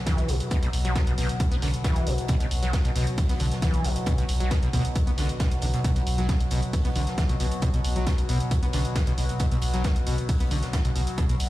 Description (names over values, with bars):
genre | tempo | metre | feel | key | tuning
driving peak-time techno | 135 BPM | 4/4 | straight | unclear | A4 = 439 Hz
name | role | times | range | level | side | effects
analog drone | drone | 0.0-11.5 s | B2 to F#3 | -31 LUFS | left 1 dB | chorus, sidechain pumping
impact | sound effects | 0.0-0.5 s | none | barely audible | none | none
overdriven acid bass | riff | 0.1-11.4 s | B2 to B3 | -30 LUFS | equal | distortion, lush chorus, sidechain pumping, ping-pong delay
electronic hi-hat | drums | 0.1-11.5 s | none | -37 LUFS | equal | none
electronic kick drum | drums | 0.1-11.3 s | none | -25 LUFS | equal | none
open jazz drum kit | drums | 0.1-11.5 s | hi-hat, snare drum | -40 LUFS | right 2 dB | sidechain pumping on hats, high-pass filter on hats, high-pass filter on snare, high-pass filter on room
saturated sub bass | bass | 0.2-11.5 s | B1 | -28 LUFS | equal | tube saturation, sidechain pumping, low-pass filter
room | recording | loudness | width
light reverb | played on a big sound system in a bare room, large studio reverb | -22 LUFS | side -16 dB against mid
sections
0.0-11.5 A section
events
impact 0.0-0.5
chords
0.0 B5